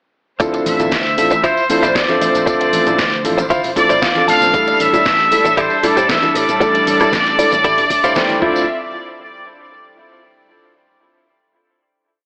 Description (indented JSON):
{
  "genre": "nu-disco, nu disco",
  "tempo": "116 BPM",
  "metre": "4/4",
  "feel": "straight",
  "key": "D minor",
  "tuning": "A4 = 440 Hz",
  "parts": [
    { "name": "dark grand piano", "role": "accompaniment", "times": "0.4-8.6 s", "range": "E3 to E5", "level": "-21 LUFS", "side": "equal", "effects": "sidechain pumping" },
    { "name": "warm studio string section", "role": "sustained chords", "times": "0.4-8.7 s", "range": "F3 to E5", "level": "-26 LUFS", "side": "equal", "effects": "vintage 12-bit sampler grit, sidechain pumping" },
    { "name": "direct-recorded clean electric guitar", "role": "riff", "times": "0.4-8.7 s", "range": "E4 to A5", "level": "-21 LUFS", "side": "equal", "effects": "analog chorus" },
    { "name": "slap bass with an envelope filter", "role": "bass", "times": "0.4-8.7 s", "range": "A1 to A2", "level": "-29 LUFS", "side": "equal", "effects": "none" },
    { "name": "electronic kick drum", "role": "drums", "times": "0.4-8.5 s", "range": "none", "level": "-28 LUFS", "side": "equal", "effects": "none" },
    { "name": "pop drum kit", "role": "drums", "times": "0.4-8.4 s", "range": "hi-hat, rim click, shaker, snare drum", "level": "-24 LUFS", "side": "equal", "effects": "overdrive" },
    { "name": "tambourine and congas", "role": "percussion", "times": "0.4-8.7 s", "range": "none", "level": "-33 LUFS", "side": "equal", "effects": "none" },
    { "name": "muted trumpet section", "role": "melody", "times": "0.7-8.7 s", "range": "C5 to F5", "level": "-18 LUFS", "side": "equal", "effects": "digital delay" }
  ],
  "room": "light reverb, small room ambience",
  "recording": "AM radio sound",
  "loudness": "-14 LUFS",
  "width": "mono",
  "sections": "0.4-8.7 drop; 8.7-10.7 final hit",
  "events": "drop 0.4-8.7; clean electric guitar fill 3.8-4.5, 7.1-8.7",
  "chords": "0.4 Dm9; 4.5 A7sus4; 8.4 Dm9; 8.7 N.C."
}